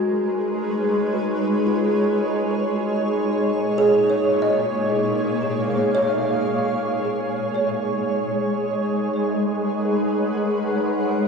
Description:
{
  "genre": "ambient",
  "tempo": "56 BPM",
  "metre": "4/4",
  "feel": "straight",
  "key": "G# dorian",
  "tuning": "A4 = 441 Hz",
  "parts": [
    { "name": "shimmering ambient pad", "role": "sustained chords", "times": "0.0-11.3 s", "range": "A#2 to G#5", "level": "-22 LUFS", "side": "equal", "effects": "chorus, built-in reverb, cassette tape" },
    { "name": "kalimba", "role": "arpeggios", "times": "0.0-7.5 s", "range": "E#4 to D#5", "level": "-25 LUFS", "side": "equal", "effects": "cassette tape, tape echo" },
    { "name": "analog drone", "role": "drone", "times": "0.0-11.3 s", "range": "G#3 to D#4", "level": "-26 LUFS", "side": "equal", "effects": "chorus, cassette tape" }
  ],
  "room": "wet lush hall reverb, RT60 2.9 s",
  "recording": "home recording on cassette, studio ambience",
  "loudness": "-19 LUFS",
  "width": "side -5 dB against mid",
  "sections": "0.0-7.0 A section; 7.0-11.3 B section",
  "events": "none",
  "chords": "0.0 G#m11; 2.7 A#m7; 7.0 G#m11",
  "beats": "0.61 1.67 | 2.73 3.79 4.86 5.95 | 7.04 8.10 9.16 10.22"
}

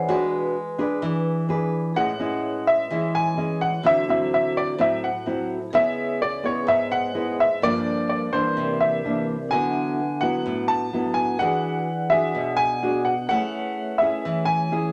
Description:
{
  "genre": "bossa nova",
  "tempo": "127 BPM",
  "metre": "4/4",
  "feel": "straight",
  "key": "A major",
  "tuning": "A4 = 440 Hz",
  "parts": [
    { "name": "nylon-string guitar", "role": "accompaniment", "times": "0.0-14.9 s", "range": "G2 to B4", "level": "-27 LUFS", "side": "equal", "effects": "none" },
    { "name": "vibraphone with medium hard mallets", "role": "accompaniment", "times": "0.0-14.9 s", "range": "G3 to F#5", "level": "-34 LUFS", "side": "equal", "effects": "none" },
    { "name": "clear concert grand piano", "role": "melody", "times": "2.0-14.9 s", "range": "C5 to A5", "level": "-25 LUFS", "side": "equal", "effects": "none" }
  ],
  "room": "moderate studio reverb, RT60 0.7 s",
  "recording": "none",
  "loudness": "-23 LUFS",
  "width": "mono",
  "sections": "0.0-2.0 A section; 2.0-14.9 B section",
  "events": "none",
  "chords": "0.1 G#m7b5; 1.0 E7; 2.0 Amaj7; 3.8 D9; 5.7 C#m7; 7.6 Gm7; 8.6 C9; 9.5 D69; 11.4 E9; 13.3 Amaj9",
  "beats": "| 0.08 0.55 1.02 1.49 | 1.96 2.43 2.90 3.37 | 3.84 4.32 4.79 5.26 | 5.73 6.20 6.67 7.15 | 7.62 8.09 8.57 9.04 | 9.51 9.99 10.46 10.93 | 11.41 11.88 12.35 12.83 | 13.30 13.77 14.25 14.72"
}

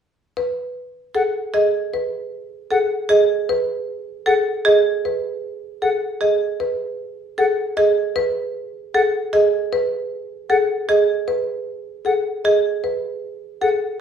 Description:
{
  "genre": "classical, minimalist pattern music",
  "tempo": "154 BPM",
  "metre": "4/4",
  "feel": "straight",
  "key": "F# dorian",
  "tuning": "A4 = 440 Hz",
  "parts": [
    { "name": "marimba with medium mallets", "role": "melody", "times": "0.4-13.9 s", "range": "G#4 to D#5", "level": "-22 LUFS", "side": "left 5 dB", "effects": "none" },
    { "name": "marimba with medium hard mallets", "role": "arpeggios", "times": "1.1-13.9 s", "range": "G#4 to A4", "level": "-21 LUFS", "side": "right 6 dB", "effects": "none" },
    { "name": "mellow concert flute", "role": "arpeggios", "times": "1.2-13.7 s", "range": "F#5", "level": "-24 LUFS", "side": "left 2 dB", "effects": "none" }
  ],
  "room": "moderate large studio reverb, RT60 0.8 s",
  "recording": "heard from further back in the room",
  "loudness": "-18 LUFS",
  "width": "side -8 dB against mid",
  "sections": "0.4-14.0 A section",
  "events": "none",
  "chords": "0.4 F#madd9 (rootless)",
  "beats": "| 0.37 0.76 1.15 1.54 | 1.93 2.32 2.71 3.10 | 3.49 3.88 4.27 4.66 | 5.04 5.43 5.82 6.21 | 6.60 6.99 7.38 7.77 | 8.16 8.55 8.94 9.33 | 9.72 10.11 10.50 10.89 | 11.28 11.67 12.06 12.45 | 12.84 13.23 13.62"
}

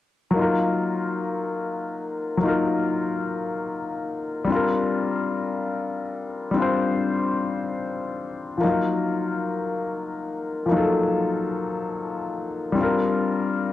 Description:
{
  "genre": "R&B",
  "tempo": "58 BPM (dotted quarters)",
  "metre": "6/8",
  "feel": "straight",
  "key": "unclear",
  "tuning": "A4 = 437 Hz",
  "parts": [
    { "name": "warm concert grand piano", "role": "solo", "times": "0.3-13.7 s", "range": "F3 to C5", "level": "-22 LUFS", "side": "left 2 dB", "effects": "cassette tape" }
  ],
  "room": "moderate studio reverb, RT60 0.6 s",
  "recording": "home recording on cassette",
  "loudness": "-22 LUFS",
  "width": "side -13 dB against mid",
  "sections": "0.3-8.6 A section; 8.6-13.7 B section",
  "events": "none",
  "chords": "0.3 Ebmadd9; 4.5 Bb69; 8.6 Ebmadd9; 12.8 Bb69",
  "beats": "| 0.35 1.38 | 2.42 3.45 | 4.49 5.52 | 6.56 7.59 | 8.62 9.66 | 10.69 11.73 | 12.76"
}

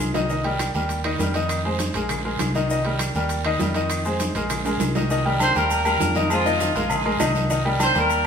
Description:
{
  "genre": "latin, salsa",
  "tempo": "200 BPM",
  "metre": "4/4",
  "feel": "straight",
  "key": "C minor",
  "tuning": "A4 = 440 Hz",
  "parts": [
    { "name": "bright upright piano", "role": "accompaniment", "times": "0.0-8.2 s", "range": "Eb3 to Eb5", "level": "-23 LUFS", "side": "left 1 dB", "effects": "none" },
    { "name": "fingered electric bass", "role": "bass", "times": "0.0-8.3 s", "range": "Bb1 to F2", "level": "-27 LUFS", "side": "equal", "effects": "none" },
    { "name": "claves", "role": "percussion", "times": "0.0-7.9 s", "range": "none", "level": "-36 LUFS", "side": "right 2 dB", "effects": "none" },
    { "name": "congas", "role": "percussion", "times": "0.0-8.2 s", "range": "none", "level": "-31 LUFS", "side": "left 1 dB", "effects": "none" },
    { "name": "guiro", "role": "percussion", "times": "0.0-8.3 s", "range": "none", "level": "-35 LUFS", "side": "right 4 dB", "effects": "none" },
    { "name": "maracas", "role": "percussion", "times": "0.0-8.2 s", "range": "none", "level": "-36 LUFS", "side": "left 4 dB", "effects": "none" },
    { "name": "timbales and agogo bells", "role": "percussion", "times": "0.1-8.3 s", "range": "none", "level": "-29 LUFS", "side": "right 2 dB", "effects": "none" },
    { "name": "clear horn section", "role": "melody", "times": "5.4-8.3 s", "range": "F3 to Eb5", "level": "-22 LUFS", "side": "equal", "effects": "none" }
  ],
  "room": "wet stone room reverb, RT60 1.2 s",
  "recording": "band playing live in one room",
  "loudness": "-20 LUFS",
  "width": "side -7 dB against mid",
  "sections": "0.0-5.1 A section; 5.1-8.3 B section",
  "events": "drum fill 0.0, 4.7-5.1",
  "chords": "0.3 Cm7; 0.9 Eb; 1.5 Fm7; 2.1 Bb7sus4; 2.7 Cm7; 3.3 Eb; 3.9 Fm7; 4.5 Bb7sus4; 5.1 Cm7; 5.7 Eb; 6.3 Fm7; 6.9 Bb7sus4; 7.5 Cm7",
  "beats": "0.00 | 0.30 0.60 0.90 1.20 | 1.50 1.80 2.10 2.40 | 2.70 3.00 3.30 3.60 | 3.90 4.20 4.50 4.80 | 5.10 5.40 5.70 6.00 | 6.30 6.60 6.90 7.20 | 7.50 7.80 8.10"
}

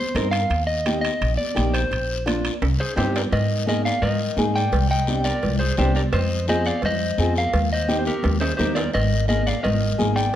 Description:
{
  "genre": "latin, cumbia",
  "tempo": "171 BPM",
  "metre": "4/4",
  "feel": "straight",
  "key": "unclear",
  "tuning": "A4 = 440 Hz",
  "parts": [
    { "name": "electric guitar at the edge of break-up", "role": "melody", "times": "0.0-10.4 s", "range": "G4 to G5", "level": "-24 LUFS", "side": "left 1 dB", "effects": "spring reverb, slapback echo" },
    { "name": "nylon-string guitar", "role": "accompaniment", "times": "0.1-10.2 s", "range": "Bb3 to Bb4", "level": "-26 LUFS", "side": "equal", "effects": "none" },
    { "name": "upright bass", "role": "bass", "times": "0.1-10.3 s", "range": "Ab1 to Ab2", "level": "-23 LUFS", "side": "equal", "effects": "none" },
    { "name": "congas", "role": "percussion", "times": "0.2-10.2 s", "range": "none", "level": "-28 LUFS", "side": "equal", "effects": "none" },
    { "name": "guiro", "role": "percussion", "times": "0.2-10.3 s", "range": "none", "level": "-34 LUFS", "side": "left 6 dB", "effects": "none" },
    { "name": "timbales and cowbell", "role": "percussion", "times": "0.2-9.8 s", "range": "none", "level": "-30 LUFS", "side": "right 5 dB", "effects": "none" }
  ],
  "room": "light reverb",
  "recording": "none",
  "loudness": "-19 LUFS",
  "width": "side -11 dB against mid",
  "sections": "0.0-3.3 A section; 3.3-10.4 B section",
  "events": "drum fill 2.6-3.3, 8.2-8.9",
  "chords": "0.0 Cm; 0.5 Eb; 1.9 Bbadd9; 2.6 Cm; 3.3 Absus2; 4.7 Csus2; 6.1 Fm; 7.5 Eb; 8.9 Absus2",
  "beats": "0.15 | 0.50 0.85 1.21 1.56 | 1.91 2.26 2.62 2.97 | 3.32 3.67 4.02 4.37 | 4.72 5.08 5.43 5.78 | 6.13 6.48 6.83 7.18 | 7.53 7.88 8.23 8.59 | 8.94 9.29 9.64 9.99 | 10.34"
}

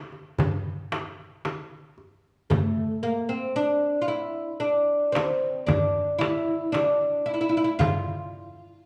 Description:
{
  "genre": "Turkish makam ensemble",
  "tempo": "113 BPM (eighths)",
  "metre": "10/8",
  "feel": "straight",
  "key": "D makam nihavent",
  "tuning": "A4 = 440 Hz",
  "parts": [
    { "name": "darbuka", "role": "percussion", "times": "0.1-8.0 s", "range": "none", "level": "-33 LUFS", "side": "equal", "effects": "none" },
    { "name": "frame drum", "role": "percussion", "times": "0.4-8.1 s", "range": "none", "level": "-31 LUFS", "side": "equal", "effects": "none" },
    { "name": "oud", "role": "melody", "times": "2.5-8.9 s", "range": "A3 to F4", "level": "-26 LUFS", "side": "equal", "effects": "none" }
  ],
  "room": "moderate recital hall reverb, RT60 1.4 s",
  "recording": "studio reverb",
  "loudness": "-26 LUFS",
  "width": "mono",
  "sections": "0.0-2.5 A section; 2.5-8.9 B section",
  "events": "none",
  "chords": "none",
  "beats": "0.39 0.92 1.45 1.98 | 2.50 3.03 3.56 4.09 4.62 5.15 5.68 6.21 6.74 7.27 | 7.80 8.33"
}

